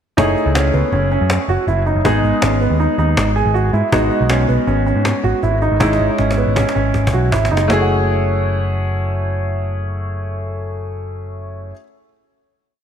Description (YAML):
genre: progressive instrumental, band music in an uneven meter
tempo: 159 BPM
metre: 5/4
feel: straight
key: F# dorian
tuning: A4 = 440 Hz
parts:
  - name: clear concert grand piano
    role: accompaniment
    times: 0.2-11.7 s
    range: G#3 to G#4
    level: -21 LUFS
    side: left 1 dB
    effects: wide subtle chorus
  - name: warm concert grand piano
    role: arpeggios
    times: 0.2-11.8 s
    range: B3 to F#5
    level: -19 LUFS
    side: right 4 dB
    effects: ping-pong delay
  - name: picked electric bass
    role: bass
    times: 0.2-11.7 s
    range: F#1 to G#2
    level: -18 LUFS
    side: left 1 dB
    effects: none
  - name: cajon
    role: drums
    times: 0.2-7.8 s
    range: none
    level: -23 LUFS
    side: left 1 dB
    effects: none
room: moderate lush hall reverb, RT60 1.8 s, studio ambience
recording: bright 1980s-style digital production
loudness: -14 LUFS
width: side -8 dB against mid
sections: 0.2-7.7 groove; 7.7-11.5 final chord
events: drum fill 5.8-7.7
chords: 0.2 F#m7; 2.0 Emaj7/G# (rootless); 5.8 C#madd9/G#; 7.7 F#m7